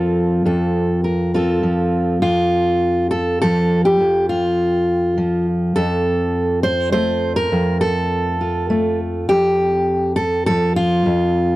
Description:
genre	folk, solo fingerstyle acoustic guitar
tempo	102 BPM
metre	3/4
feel	straight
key	F major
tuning	A4 = 440 Hz
part	fingerpicked steel-string acoustic guitar	solo	0.0-11.6 s	F2 to C5	-15 LUFS	equal	none
room	little or no reverb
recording	dry, close 1970s-style studio recording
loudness	-15 LUFS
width	side -17 dB against mid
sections	0.0-2.2 A section; 2.2-11.6 B section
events	none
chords	0.0 F; 9.3 Dm/F (rootless)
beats	| 0.43 1.02 1.61 | 2.22 2.82 3.41 | 4.00 4.59 5.17 | 5.75 6.33 6.92 | 7.50 8.10 8.69 | 9.29 9.88 10.47 | 11.06

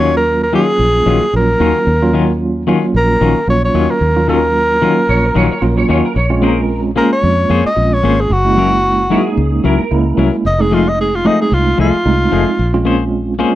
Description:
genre	blues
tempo	112 BPM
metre	4/4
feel	swing 55% on 16ths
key	unclear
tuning	A4 = 443 Hz
part	breathy tenor saxophone	melody	0.0-12.8 s	F4 to Eb5	-15 LUFS	equal	none
part	tine electric piano	accompaniment	0.0-13.6 s	Gb3 to F4	-17 LUFS	right 3 dB	medium tremolo
part	clean electric guitar	stabs	0.0-13.6 s	Eb3 to C5	-17 LUFS	left 6 dB	tremolo
part	fingered electric bass	bass	0.0-13.4 s	F1 to F2	-16 LUFS	equal	none
part	electric guitar through a small old amp	second line	5.1-10.3 s	Ab4 to Db5	-21 LUFS	right 4 dB	ensemble chorus
room	little or no reverb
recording	dry, close 1970s-style studio recording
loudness	-11 LUFS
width	side -14 dB against mid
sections	0.0-13.6 A section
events	none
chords	0.0 Ebm9; 6.2 Bbm9; 8.3 Gb7; 10.4 F7#9; 12.6 Bbm9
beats	0.26 0.80 1.33 | 1.87 2.41 2.94 3.48 | 4.02 4.55 5.09 5.62 | 6.16 6.70 7.23 7.77 | 8.30 8.84 9.38 9.91 | 10.45 10.98 11.52 12.05 | 12.59 13.12

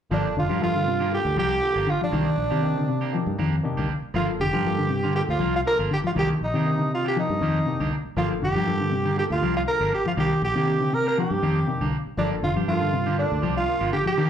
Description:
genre	afrobeat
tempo	119 BPM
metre	4/4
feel	swing 54% on 16ths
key	G minor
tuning	A4 = 440 Hz
part	growling tenor saxophone	melody	0.1-14.3 s	D4 to Bb4	-26 LUFS	equal	slapback echo
part	warm trumpet	second line	0.1-14.3 s	D4 to Bb4	-31 LUFS	right 6 dB	slapback echo
part	barky tine electric piano	accompaniment	0.1-14.3 s	C3 to Bb4	-36 LUFS	left 3 dB	overdrive, slapback echo
part	mellow electric guitar	arpeggios	0.1-14.3 s	C3 to F3	-27 LUFS	left 4 dB	none
part	electric guitar at the edge of break-up	stabs	0.1-14.3 s	Eb3 to G4	-34 LUFS	right 7 dB	slapback echo
part	fingered electric bass	bass	0.1-14.1 s	F1 to C3	-27 LUFS	right 1 dB	none
room	moderate club reverb, RT60 0.6 s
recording	live gig heard through the venue's PA, club reverb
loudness	-21 LUFS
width	side -9 dB against mid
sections	0.1-14.3 A section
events	none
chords	0.1 Gm7; 2.1 Cm9; 4.1 Gm7; 6.2 Cm9; 8.2 Gm7; 10.2 Cm9; 12.2 Gm7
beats	| 0.11 0.62 1.12 1.62 | 2.13 2.63 3.14 3.64 | 4.14 4.65 5.15 5.66 | 6.16 6.66 7.17 7.67 | 8.17 8.67 9.18 9.68 | 10.18 10.68 11.18 11.68 | 12.19 12.69 13.19 13.69 | 14.19

